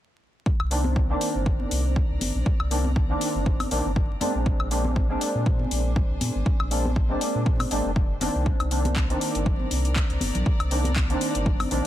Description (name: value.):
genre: deep house.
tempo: 120 BPM.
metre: 4/4.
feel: swing 56% on 16ths.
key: C minor.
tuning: A4 = 440 Hz.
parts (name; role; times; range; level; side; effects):
electronic kick drum; drums; 0.5-11.6 s; none; -24 LUFS; equal; overdrive.
warm chamber string section; texture; 0.5-11.9 s; Eb3 to Bb5; -42 LUFS; left 1 dB; sidechain pumping.
warm sub bass; bass; 0.6-11.9 s; F1 to Bb2; -26 LUFS; equal; sidechain pumping.
house drum kit; drums; 0.6-11.8 s; handclaps, hi-hat, woodblock; -31 LUFS; left 3 dB; overdrive.
percussive organ stab; stabs; 0.7-11.9 s; Eb3 to D4; -28 LUFS; equal; ensemble chorus, cassette tape, sidechain pumping, ping-pong delay.
congas; percussion; 0.8-11.7 s; none; -34 LUFS; left 1 dB; none.
room: little or no reverb.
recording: dense, heavily limited modern master, vinyl crackle.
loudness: -22 LUFS.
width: side -12 dB against mid.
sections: 0.5-11.9 A section.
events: fade-in on string section 0.5-11.9.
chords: 0.5 Cm9; 4.2 Bb9; 8.5 Cm9.